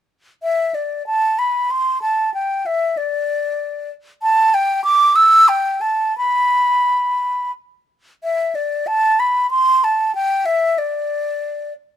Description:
classical, baroque-style fantasia for unaccompanied flute; 86-96 BPM; 3/4; rubato; A4 = 440 Hz
mellow concert flute; solo; 0.4-11.7 s; D5 to E6; -15 LUFS; equal
light reverb; minimal, uncompressed stereo recording; -15 LUFS; side -10 dB against mid
0.4-12.0 A section

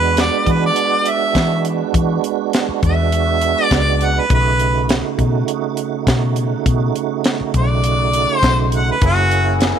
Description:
straight-eighth soul blues; 102 BPM; 4/4; straight; A4 = 440 Hz
warm harmonica; melody; 0.0-9.6 s; F#4 to F#5; -18 LUFS; equal
tonewheel organ; accompaniment; 0.0-9.8 s; C#3 to G#4; -20 LUFS; right 13 dB; slow rotary speaker, overdrive, chorus vibrato
vintage muted fingered electric bass; bass; 0.0-9.7 s; F#1 to E3; -18 LUFS; left 2 dB
tight funk drum kit; drums; 0.2-9.8 s; hi-hat, kick drum, snare drum; -20 LUFS; left 1 dB
mellow horn section; sustained chords; 9.0-9.8 s; A#4 to G#5; -24 LUFS; left 15 dB
light reverb, small room ambience; 1960s-style stereo with parts hard left and right; -14 LUFS; side -8 dB against mid
0.0-9.8 A section
0.0 E9; 4.3 B9; 9.0 F#9

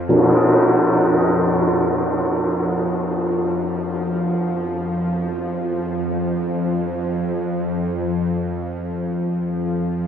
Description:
dark ambient drone; free time; A4 = 439 Hz
bowed-like drone; drone; 0.0-10.1 s; F2 to F3; -22 LUFS; equal; built-in reverb
bronze singing bowl; texture; 0.1-10.1 s; F3 to F4; -27 LUFS; right 5 dB
wet huge ambient reverb, RT60 8.3 s; -18 LUFS; side -8 dB against mid
0.1-10.1 A section
fade-out on singing bowl 0.1-10.1

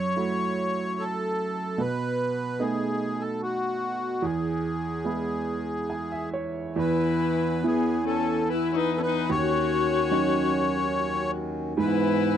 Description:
celtic folk, Celtic slow air; 73 BPM; 3/4; rubato; E major; A4 = 440 Hz
accordion; melody; 0.0-12.4 s; F#4 to C#5; -28 LUFS; left 1 dB; light tremolo tuning
bright upright piano; accompaniment; 0.0-12.4 s; D#2 to G#5; -28 LUFS; right 4 dB
rich viola; second line; 6.8-12.4 s; B3 to F#4; -29 LUFS; left 15 dB
pedal harmonium; sustained chords; 6.8-12.4 s; G#2 to G#5; -32 LUFS; left 3 dB; stereo widening
little or no reverb; dry, close 1970s-style studio recording; -24 LUFS; side -9 dB against mid
0.0-6.8 A section; 6.8-12.4 A section
upright piano fill 5.5-6.8
0.0 F#m7; 1.8 B7; 4.2 E; 9.3 D#m7; 11.8 E/G#

